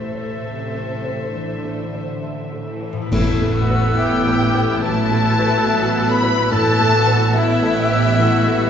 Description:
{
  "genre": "cinematic, emotional film score for orchestra",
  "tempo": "67-73 BPM",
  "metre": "4/4",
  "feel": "rubato",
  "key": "A dorian",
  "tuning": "A4 = 442 Hz",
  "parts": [
    { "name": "rich symphonic violin section", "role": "melody", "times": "0.0-8.7 s", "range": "E4 to E5", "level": "-30 LUFS", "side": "left 4 dB", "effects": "none" },
    { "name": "warm clarinet", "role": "second line", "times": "0.0-8.7 s", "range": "A4 to B4", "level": "-29 LUFS", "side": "equal", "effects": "none" },
    { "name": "warm studio violin section", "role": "second line", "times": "0.0-8.7 s", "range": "C5 to B5", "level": "-22 LUFS", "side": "left 3 dB", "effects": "none" },
    { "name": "clear symphonic viola section", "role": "accompaniment", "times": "0.0-8.7 s", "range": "E3 to B3", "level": "-25 LUFS", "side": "right 1 dB", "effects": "none" },
    { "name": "warm baby grand piano", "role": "accompaniment", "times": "0.0-8.7 s", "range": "A2 to E5", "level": "-25 LUFS", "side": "left 1 dB", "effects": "none" },
    { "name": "concert harp", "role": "arpeggios", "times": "0.0-7.0 s", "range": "A2 to E5", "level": "-30 LUFS", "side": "left 4 dB", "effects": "none" },
    { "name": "rich symphonic cello section", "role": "bass", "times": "0.0-8.7 s", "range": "A2 to E3", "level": "-25 LUFS", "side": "right 2 dB", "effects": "none" },
    { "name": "warm symphonic double bass section", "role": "bass", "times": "0.0-8.7 s", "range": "A1", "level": "-24 LUFS", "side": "right 4 dB", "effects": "none" },
    { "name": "bright silver concert flute", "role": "second line", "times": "3.1-8.7 s", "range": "E6", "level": "-26 LUFS", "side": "left 2 dB", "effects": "none" },
    { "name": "dark French horn section", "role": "sustained chords", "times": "3.1-8.7 s", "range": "B3 to E4", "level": "-26 LUFS", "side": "left 5 dB", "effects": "none" },
    { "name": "clash cymbals and concert bass drum", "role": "percussion", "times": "3.1-4.8 s", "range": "none", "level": "-28 LUFS", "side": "equal", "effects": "none" },
    { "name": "timpani", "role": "percussion", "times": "3.1-4.4 s", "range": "A2", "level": "-27 LUFS", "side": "equal", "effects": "none" },
    { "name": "warm cor anglais", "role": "second line", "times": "4.0-8.7 s", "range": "E4 to B4", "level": "-25 LUFS", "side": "equal", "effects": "none" }
  ],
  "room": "wet recital hall reverb, RT60 1.8 s",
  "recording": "heard from further back in the room, nothing above 7.9 kHz",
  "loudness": "-15 LUFS",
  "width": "side -8 dB against mid",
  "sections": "0.0-3.1 A section; 3.1-8.7 B section",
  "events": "band accent 3.1-4.0",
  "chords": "0.0 Am; 3.1 Asus2",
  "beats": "0.46 1.34 2.23 | 3.11 3.96 4.81 5.67 | 6.52 7.35 8.18"
}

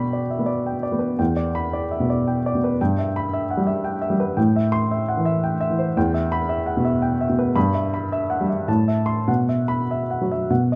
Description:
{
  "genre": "classical, romantic character piece for solo piano",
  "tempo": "97-116 BPM",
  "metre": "3/4",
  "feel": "rubato",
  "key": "E minor from 4.4 s",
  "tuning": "A4 = 439 Hz",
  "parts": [
    { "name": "warm baby grand piano", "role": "solo", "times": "0.0-10.8 s", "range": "E2 to C6", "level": "-22 LUFS", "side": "equal", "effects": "none" }
  ],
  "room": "wet large studio reverb, RT60 0.9 s",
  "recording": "heard from further back in the room",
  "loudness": "-22 LUFS",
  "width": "mono",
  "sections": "0.0-10.8 A section",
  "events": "none",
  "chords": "0.0 G/B; 1.2 Em7; 2.8 Em/G; 4.4 Am7; 6.0 Em; 7.6 Em/G; 8.7 Am; 9.3 Bsus4",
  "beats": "0.10 0.65 | 1.20 1.72 2.26 | 2.79 3.32 3.84 | 4.37 4.89 5.42 | 5.96 6.49 7.02 | 7.56 8.10 8.68 | 9.28 9.89 10.50"
}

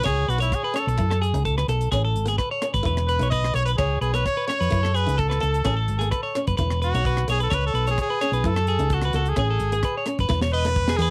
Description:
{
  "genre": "highlife guitar band",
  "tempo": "129 BPM",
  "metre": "4/4",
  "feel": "straight",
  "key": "E major",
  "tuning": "A4 = 440 Hz",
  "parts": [
    { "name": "brilliant trumpet", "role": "melody", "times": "0.0-11.1 s", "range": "E4 to D#5", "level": "-29 LUFS", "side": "equal", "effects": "cassette tape" },
    { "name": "picked old ladder-braced acoustic guitar", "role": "accompaniment", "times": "0.0-11.1 s", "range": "B3 to E4", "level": "-34 LUFS", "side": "equal", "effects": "none" },
    { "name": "clean electric guitar", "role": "arpeggios", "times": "0.0-11.1 s", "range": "G#4 to D#5", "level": "-29 LUFS", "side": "equal", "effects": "tape echo" },
    { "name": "hollow-body short-scale fingered electric bass", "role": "bass", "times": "0.0-11.1 s", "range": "E1 to F#2", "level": "-26 LUFS", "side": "equal", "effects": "none" },
    { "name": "tight funk drum kit", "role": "drums", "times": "0.1-11.1 s", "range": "hi-hat, kick drum, rim click, snare drum", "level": "-32 LUFS", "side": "equal", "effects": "cassette tape" }
  ],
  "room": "light reverb",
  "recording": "home recording on cassette",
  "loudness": "-23 LUFS",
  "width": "mono",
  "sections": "0.0-10.3 A section",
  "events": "none",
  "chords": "0.0 B7sus2; 1.0 F#m7; 1.9 Amaj7; 2.9 E5; 3.8 C#7(no3)/B; 4.7 F#m7; 5.6 Amaj7; 6.6 E5; 7.5 C#5; 8.4 F#m7; 9.4 Amaj7; 10.3 Emaj7",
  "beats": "0.05 0.52 | 0.98 1.45 1.92 2.39 | 2.85 3.32 3.79 4.25 | 4.72 5.18 5.65 6.11 | 6.58 7.04 7.51 7.97 | 8.44 8.90 9.37 9.83 | 10.29 10.76"
}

